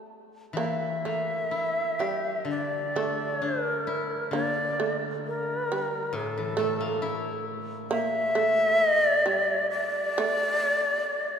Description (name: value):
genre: japanese traditional, Japanese chamber music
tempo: 58-69 BPM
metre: 4/4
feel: rubato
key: A in sen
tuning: A4 = 439 Hz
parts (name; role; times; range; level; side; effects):
- shamisen; second line; 0.0-11.1 s; G3 to Bb3; -33 LUFS; right 5 dB; none
- koto; accompaniment; 0.5-8.8 s; A2 to G4; -34 LUFS; left 4 dB; none
- bright reedy shakuhachi; melody; 0.6-11.4 s; A4 to E5; -26 LUFS; left 1 dB; none
room: wet cathedral reverb, RT60 4.5 s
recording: recorded in a church or concert hall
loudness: -24 LUFS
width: side -7 dB against mid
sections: 0.6-11.4 A section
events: none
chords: none